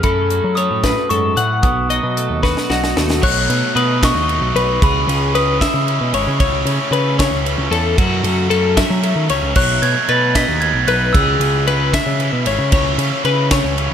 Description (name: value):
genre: math rock and midwest emo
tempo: 76 BPM (dotted quarters)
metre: 6/8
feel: straight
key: unclear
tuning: A4 = 440 Hz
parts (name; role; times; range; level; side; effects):
- glockenspiel with rubber mallets; melody; 0.0-6.2, 9.6-12.5 s; B5 to B6; -21 LUFS; right 1 dB; plate reverb, tape echo
- twelve-string electric guitar; accompaniment; 0.0-4.8 s; F#2 to F#4; -24 LUFS; right 8 dB; wide subtle chorus, plate reverb
- twelve-string electric guitar; arpeggios; 0.0-13.9 s; F#4 to F#5; -20 LUFS; left 7 dB; plate reverb, tape echo
- growling picked electric bass; bass; 0.0-13.9 s; G#1 to F#3; -19 LUFS; right 1 dB; overdrive
- crisp fusion drum kit; drums; 0.0-13.9 s; crash cymbal, hi-hat, kick drum, ride cymbal, snare drum; -20 LUFS; right 1 dB; none
- cranked stack guitar; riff; 3.2-13.9 s; F#2 to D#4; -23 LUFS; right 2 dB; overdrive
room: light reverb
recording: none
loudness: -14 LUFS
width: side -8 dB against mid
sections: 0.0-3.2 A section; 3.2-13.9 B section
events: drum fill 2.4-3.2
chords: 0.0 F#m7; 1.6 B7; 4.8 C#m7; 6.4 A/C#; 8.0 F#m7; 9.6 B7; 11.1 C#m7; 12.7 A/C#